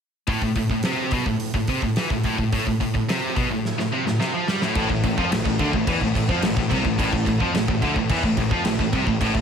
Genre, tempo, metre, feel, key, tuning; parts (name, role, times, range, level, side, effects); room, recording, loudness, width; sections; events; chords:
heavy metal; 108 BPM; 4/4; straight; A minor; A4 = 440 Hz
heavy high-gain guitar; riff; 0.3-9.4 s; A2 to G3; -25 LUFS; right 8 dB; distortion
scooped high-gain guitar; riff; 0.3-9.4 s; A2 to G3; -25 LUFS; left 8 dB; distortion
big rock drum kit; drums; 0.3-9.4 s; crash cymbal, hi-hat, kick drum, snare drum; -25 LUFS; equal
heavy high-gain guitar; riff; 4.8-9.4 s; A2 to F3; -28 LUFS; equal; distortion
fuzz picked electric bass; bass; 4.8-9.4 s; A1 to F2; -27 LUFS; equal; overdrive
little or no reverb; -20 LUFS; side -7 dB against mid
0.3-4.8 A section; 4.8-9.4 B section
drum fill 3.6-4.8
0.3 Am